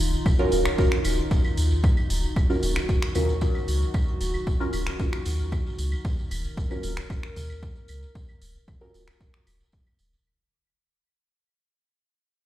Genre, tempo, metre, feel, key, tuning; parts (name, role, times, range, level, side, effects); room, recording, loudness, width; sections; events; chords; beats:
dub techno; 114 BPM; 4/4; straight; Eb minor; A4 = 440 Hz
dark analog pad; sustained chords; 0.0-10.2 s; Eb3 to Bb4; -34 LUFS; left 1 dB; chorus, vintage 12-bit sampler grit, sidechain pumping
warm sub bass; bass; 0.0-10.2 s; Eb1 to Eb2; -26 LUFS; equal; sidechain pumping
tambourine; percussion; 0.0-10.2 s; -40 LUFS; right 4 dB
electronic kick drum; drums; 0.3-9.8 s; -24 LUFS; equal; overdrive, studio reverb
electronic toms and claves; percussion; 0.3-10.0 s; -40 LUFS; equal; sidechain pumping on perc, studio reverb, sidechain pumping on toms, dub echo
deep mellow chord stab; stabs; 0.4-9.0 s; Db4 to Bb4; -28 LUFS; right 1 dB; chorus, phaser, sidechain pumping, dub echo
deep house drum kit; drums; 0.5-10.1 s; finger snaps, hi-hat; -35 LUFS; equal; studio reverb, dub echo
light reverb; played on a big sound system in a bare room, large studio reverb; -22 LUFS; side -13 dB against mid
0.0-10.3 A section
fade-out 1.8-10.3
0.0 Ebm7
0.26 0.79 1.31 | 1.84 2.36 2.89 3.42 | 3.94 4.47 5.00 5.52 | 6.05 6.57 7.10 7.63 | 8.15 8.68 9.21 9.73